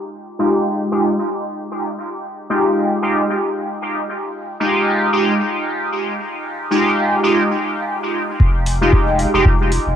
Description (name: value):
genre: dub techno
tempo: 114 BPM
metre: 4/4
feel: swing 56% on 16ths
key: F minor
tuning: A4 = 438 Hz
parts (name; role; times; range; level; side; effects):
- resonant sweep polysynth; stabs; 0.4-9.5 s; Ab3 to G4; -17 LUFS; equal; chorus, phaser, sidechain pumping, cassette tape, dub echo
- pure sine sub bass; bass; 8.4-10.0 s; F1; -20 LUFS; equal; sidechain pumping
- electronic kick drum; drums; 8.4-9.6 s; none; -15 LUFS; equal; cassette tape
- electronic hi-hat; drums; 8.7-9.8 s; none; -28 LUFS; equal; overdrive, low-pass filter on hats, cassette tape, low-pass filter on room
room: wet small room reverb, RT60 0.6 s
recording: home recording on cassette, low-pass filter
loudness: -15 LUFS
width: side -9 dB against mid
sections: 0.0-8.4 A section; 8.4-10.0 B section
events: filter sweep 0.0-8.4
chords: 0.0 Fm9